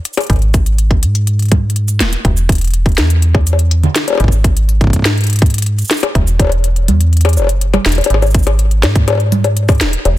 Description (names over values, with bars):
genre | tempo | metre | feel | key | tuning
IDM | 123 BPM | 4/4 | straight | unclear | A4 = 440 Hz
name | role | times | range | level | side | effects
organic electronic drum kit | drums | 0.1-10.2 s | bongos, cabasa, congas, hi-hat, snare drum | -16 LUFS | left 2 dB | tape echo
metallic FM bass | bass | 0.3-10.2 s | Eb1 to Ab2 | -12 LUFS | equal | none
electronic kick drum | drums | 0.3-9.8 s | none | -12 LUFS | equal | none
room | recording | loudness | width
little or no reverb | dense, heavily limited modern master | -10 LUFS | side -15 dB against mid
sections
0.0-8.1 A section; 8.1-10.2 A section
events
kick drops out 7.1-8.1; drum fill 7.9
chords
none